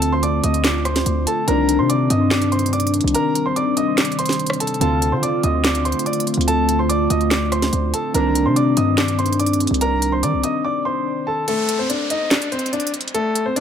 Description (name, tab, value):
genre	hip hop, trap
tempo	144 BPM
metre	4/4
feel	half-time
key	D phrygian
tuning	A4 = 438 Hz
part	warm concert grand piano	melody	0.0-13.6 s	A3 to Eb6	-22 LUFS	equal	analog delay
part	warbly lo-fi synth keys	accompaniment	0.0-11.5 s	D3 to F4	-22 LUFS	left 2 dB	chorus, phaser, analog delay
part	deep dark ambient pad	sustained chords	0.0-11.4 s	C3 to F4	-26 LUFS	equal	chorus, built-in reverb
part	hard-hitting 808-style bass	bass	0.0-10.4 s	C2 to Eb3	-22 LUFS	equal	none
part	trap drum kit	drums	0.0-13.6 s	handclaps, hi-hat, rim click, snare drum	-22 LUFS	right 1 dB	none
part	downlifter	sound effects	11.5-13.6 s	none	-28 LUFS	equal	none
room	light reverb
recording	echo-heavy mix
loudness	-16 LUFS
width	side -8 dB against mid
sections	0.0-11.5 A section; 11.5-13.6 B section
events	break 3.1-4.8, 10.6-11.5; kick muted 11.5-13.6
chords	0.0 Dm7; 1.5 Cmadd9; 4.8 Dm7; 8.1 Cmadd9; 11.5 D5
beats	0.23 0.65 1.06 | 1.48 1.90 2.31 2.73 | 3.15 3.56 3.98 4.39 | 4.81 5.23 5.64 6.06 | 6.48 6.89 7.31 7.73 | 8.14 8.56 8.98 9.39 | 9.81 10.23 10.64 11.06 | 11.48 11.89 12.31 12.73 | 13.14 13.56